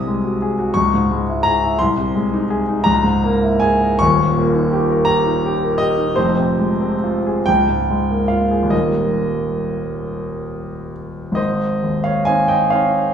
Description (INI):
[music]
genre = classical, romantic nocturne for solo piano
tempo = 43-59 BPM (dotted quarters)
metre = 6/8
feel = rubato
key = Ab major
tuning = A4 = 439 Hz
[part]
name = warm grand piano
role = solo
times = 0.0-13.1 s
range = Eb1 to D#6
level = -15 LUFS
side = equal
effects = none
[sound]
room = wet stone room reverb, RT60 1.3 s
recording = heard from further back in the room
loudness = -15 LUFS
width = side -8 dB against mid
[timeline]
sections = 0.0-11.4 A section; 11.4-13.1 B section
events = none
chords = 0.0 G#7/B#; 0.8 C#m; 1.8 Ab/C; 2.9 Bbm7b5/Db; 4.0 Eb7; 6.2 Fm; 7.5 Bbm7/Db; 8.7 Eb; 11.4 Ab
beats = 0.76 | 1.80 2.86 | 4.02 5.08 | 6.17 7.47 | 8.73 10.05 | 11.38 12.74